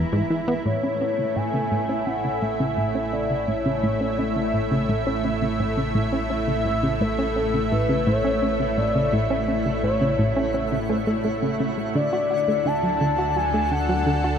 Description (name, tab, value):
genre	ambient, sequencer-driven space music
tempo	85 BPM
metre	4/4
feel	straight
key	A major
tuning	A4 = 440 Hz
part	lush unison pad	sustained chords	0.0-14.4 s	A2 to A#5	-26 LUFS	right 1 dB	chorus
part	plucky analog bass	riff	0.0-14.3 s	G#2 to F#4	-25 LUFS	equal	tape echo
part	round analog bass	bass	0.0-14.4 s	E1 to D2	-33 LUFS	equal	none
part	expressive synth lead	melody	0.7-14.4 s	A4 to A5	-26 LUFS	left 2 dB	chorus, tape echo
part	twinkling granular texture	texture	6.5-14.4 s	F#4 to F#5	-41 LUFS	left 1 dB	built-in reverb
room	wet huge ambient reverb, RT60 7.7 s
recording	dark, warm production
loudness	-20 LUFS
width	side -8 dB against mid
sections	0.7-14.4 A section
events	fade-in on analog synth bass 0.7-14.4; fade-in on synth texture 0.7-14.4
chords	0.0 E; 0.7 A; 12.0 D